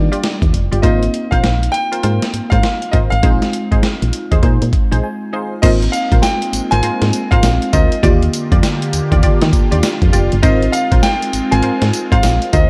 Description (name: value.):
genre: R&B, new jack swing.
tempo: 100 BPM.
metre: 4/4.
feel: swing 62% on 16ths.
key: unclear.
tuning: A4 = 445 Hz.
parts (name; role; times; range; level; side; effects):
clear concert grand piano; melody; 0.0-12.7 s; D5 to Ab5; -22 LUFS; equal; none.
FM electric piano with soft pad layer; accompaniment; 0.0-12.7 s; D3 to Ab5; -25 LUFS; equal; chorus.
solid FM bass; bass; 0.0-12.7 s; F1 to Eb3; -18 LUFS; equal; none.
funky polysynth comp; stabs; 0.1-12.7 s; Eb4 to D5; -25 LUFS; equal; chorus.
breakbeat sampler-style drum kit; drums; 0.1-12.7 s; crash cymbal, hi-hat, kick drum, snare drum, tambourine; -18 LUFS; equal; gated reverb.
phased analog pad; sustained chords; 6.0-12.7 s; D3 to G4; -25 LUFS; equal; phaser, chorus.
room: little or no reverb.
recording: none.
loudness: -15 LUFS.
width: mono.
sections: 0.0-5.6 A section; 5.6-12.7 B section.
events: FM electric piano fill 4.7-5.6; break 5.0-5.6.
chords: 0.0 Ebmaj9; 0.8 Ab69; 8.0 Ebmaj9; 10.4 Ab69.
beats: 0.23 | 0.83 1.43 2.03 2.63 | 3.23 3.83 4.43 5.03 | 5.63 6.23 6.83 7.43 | 8.03 8.63 9.23 9.83 | 10.43 11.03 11.63 12.23.